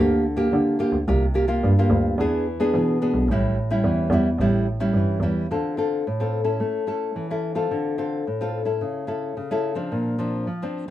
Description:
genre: samba and choro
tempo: 109 BPM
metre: 4/4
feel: straight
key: D minor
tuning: A4 = 442 Hz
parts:
  - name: nylon-string guitar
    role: accompaniment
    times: 0.0-10.9 s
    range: G2 to A4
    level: -22 LUFS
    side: equal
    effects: none
  - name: bright double bass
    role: bass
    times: 0.0-5.5 s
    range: A1 to E3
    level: -23 LUFS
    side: right 1 dB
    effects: none
room: wet small room reverb, RT60 0.5 s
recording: minimal, uncompressed stereo recording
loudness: -20 LUFS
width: side -13 dB against mid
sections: 0.0-5.5 A section; 5.5-10.9 B section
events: none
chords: 0.0 Gm7/D; 1.1 C7sus4; 2.2 E7; 3.3 A7; 5.5 Dm7; 6.6 A; 7.7 Dm7; 8.8 A/C#; 9.9 Bbadd9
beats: 0.54 | 1.09 1.64 2.19 2.74 | 3.29 3.85 4.40 4.95 | 5.50 6.05 6.61 7.16 | 7.71 8.27 8.82 9.38 | 9.93 10.48

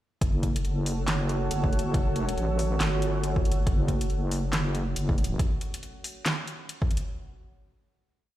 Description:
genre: deep dubstep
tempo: 139 BPM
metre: 4/4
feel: swing 59% on 16ths, half-time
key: F# phrygian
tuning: A4 = 443 Hz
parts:
  - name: dark analog pad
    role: sustained chords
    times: 0.6-7.1 s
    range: F#4 to F#5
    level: -35 LUFS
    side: right 3 dB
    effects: chorus, phaser
  - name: deep soft wobble bass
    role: bass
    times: 0.2-5.4 s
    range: F#1 to A1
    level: -27 LUFS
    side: equal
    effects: chorus
  - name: deep house drum kit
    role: drums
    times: 0.2-7.1 s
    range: handclaps, hi-hat, snare drum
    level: -32 LUFS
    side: equal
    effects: overdrive
  - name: electronic kick drum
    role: drums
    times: 0.2-6.9 s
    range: none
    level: -26 LUFS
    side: equal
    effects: overdrive
  - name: flickering grainy texture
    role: texture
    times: 0.5-5.4 s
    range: A3 to A4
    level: -38 LUFS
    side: equal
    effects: built-in reverb
room: little or no reverb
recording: played on a big sound system in a bare room, large studio reverb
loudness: -25 LUFS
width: side -14 dB against mid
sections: 0.2-7.1 drop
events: drop 0.2-7.1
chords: 0.2 F#m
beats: | 0.21 0.65 1.08 1.51 | 1.94 2.37 2.81 3.24 | 3.67 4.10 4.53 4.96 | 5.39 5.83 6.26 6.69

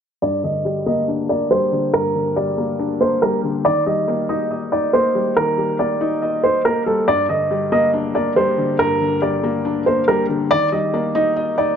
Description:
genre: hip hop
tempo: 140 BPM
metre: 4/4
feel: half-time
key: G minor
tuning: A4 = 440 Hz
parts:
  - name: dark baby grand piano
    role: melody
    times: 0.2-11.8 s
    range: A4 to Eb5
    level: -18 LUFS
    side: right 2 dB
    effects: low-pass filter, analog delay
  - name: felt-muted upright piano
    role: accompaniment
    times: 0.2-11.8 s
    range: G2 to Eb5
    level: -21 LUFS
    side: left 3 dB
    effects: low-pass filter, analog delay
room: moderate spring reverb, RT60 1.7 s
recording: echo-heavy mix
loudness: -16 LUFS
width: side -7 dB against mid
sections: 0.2-11.8 A section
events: filter sweep 0.2-11.8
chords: 0.2 Gm; 3.6 Eb; 7.1 Gm; 10.5 Eb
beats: | 0.22 0.65 1.08 1.51 | 1.94 2.36 2.79 3.22 | 3.65 4.08 4.51 4.94 | 5.36 5.79 6.22 6.65 | 7.08 7.51 7.94 8.36 | 8.79 9.22 9.65 10.08 | 10.51 10.94 11.36

